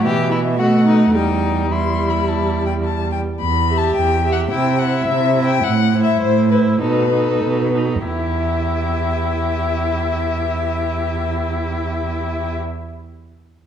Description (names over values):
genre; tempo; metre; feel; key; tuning
quick classical-period movement for string quartet; 92-111 BPM; 4/4; straight; E minor; A4 = 440 Hz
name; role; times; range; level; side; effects
warm violin; melody; 0.0-12.6 s; B4 to C6; -22 LUFS; left 9 dB; none
warm violin; second line; 0.0-12.6 s; D#4 to E5; -26 LUFS; left 4 dB; none
rich viola; accompaniment; 0.0-12.6 s; E3 to G4; -22 LUFS; right 2 dB; none
rich cello; bass; 0.0-12.6 s; E2 to C3; -20 LUFS; right 4 dB; none
room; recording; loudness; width
wet recital hall reverb, RT60 1.4 s; dark, warm production; -16 LUFS; side -8 dB against mid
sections
0.0-3.4 A section; 3.4-8.1 B section; 8.1-13.1 C section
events
slowing down 2.3-8.1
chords
0.0 Em/B; 0.6 B7; 1.1 Em; 4.5 C; 5.6 Am6; 6.8 B7; 8.1 Em